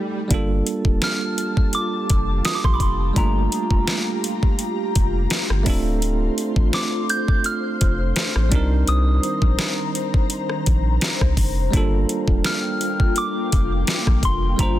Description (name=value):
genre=contemporary R&B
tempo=84 BPM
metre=4/4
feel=swing 54% on 16ths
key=G minor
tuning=A4 = 440 Hz
part: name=bell-like tine electric piano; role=accompaniment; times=0.0-14.8 s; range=G3 to C5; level=-26 LUFS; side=right 4 dB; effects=fast stereo tremolo
part: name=ethereal airy pad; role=sustained chords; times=0.9-14.8 s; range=Eb3 to C6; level=-29 LUFS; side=left 4 dB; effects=ensemble chorus, built-in reverb
part: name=warm sub bass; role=bass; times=0.3-14.8 s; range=D1 to C2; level=-21 LUFS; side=equal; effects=none
part: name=smooth R&B drum kit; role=drums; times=0.3-14.8 s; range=hi-hat, kick drum, rim click, snare drum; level=-20 LUFS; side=equal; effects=none
part: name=soft synth bell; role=melody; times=1.0-14.8 s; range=Bb5 to G6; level=-27 LUFS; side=equal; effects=chorus, phaser, digital delay
room=little or no reverb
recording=dense, heavily limited modern master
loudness=-18 LUFS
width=side -13 dB against mid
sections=0.3-14.8 A section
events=break 0.0-0.3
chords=0.3 Gm9; 5.7 Dm7; 8.5 Cm9; 11.7 Gm9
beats=| 0.30 1.02 1.73 2.45 | 3.16 3.88 4.59 5.30 | 6.02 6.73 7.45 8.16 | 8.88 9.59 10.30 11.02 | 11.73 12.45 13.16 13.88 | 14.59